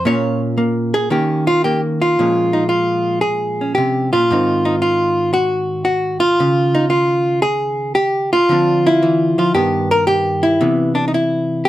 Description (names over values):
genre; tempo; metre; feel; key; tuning
solo jazz; 113 BPM; 4/4; swing 69% on 8ths, rubato; unclear; A4 = 440 Hz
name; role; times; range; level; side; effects
hollow-body jazz guitar; solo; 0.0-11.7 s; G2 to Db5; -14 LUFS; equal; none
room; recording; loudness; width
light reverb; close, detailed microphones; -14 LUFS; side -14 dB against mid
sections
0.0-2.2 A section; 2.2-11.7 B section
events
hollow-body jazz guitar solo 0.0-2.2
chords
0.0 Bbm; 1.1 Eb5; 2.2 Bbm7; 4.3 Ab7; 6.4 Dbadd9; 8.5 Dm9; 9.5 Gaug; 10.6 Cmaj7